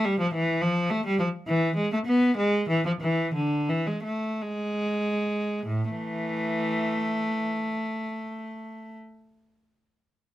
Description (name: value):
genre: classical, baroque-style suite movement for unaccompanied cello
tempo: 45-73 BPM (dotted quarters)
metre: 12/8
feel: rubato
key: unclear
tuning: A4 = 440 Hz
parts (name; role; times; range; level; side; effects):
- rich cello; solo; 0.0-8.9 s; A2 to B3; -25 LUFS; equal; none
room: light reverb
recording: none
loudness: -24 LUFS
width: side -14 dB against mid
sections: 0.0-5.7 A section; 5.7-10.3 B section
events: slowing down 0.0-5.7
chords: none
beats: 0.62 | 1.48 2.37 3.34 4.41 | 5.66 6.87 8.09